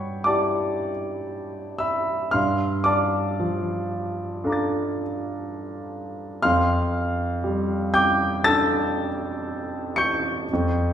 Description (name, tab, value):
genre	classical, impressionist solo piano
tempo	59 BPM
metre	4/4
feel	rubato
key	unclear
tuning	A4 = 440 Hz
part	warm grand piano	solo	0.0-10.9 s	F2 to C#7	-22 LUFS	equal	none
room	wet recital hall reverb, RT60 1.6 s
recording	heard from further back in the room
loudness	-21 LUFS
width	side -9 dB against mid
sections	0.0-10.9 A section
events	none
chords	0.0 G6; 2.4 Bbmaj7/G; 6.4 F69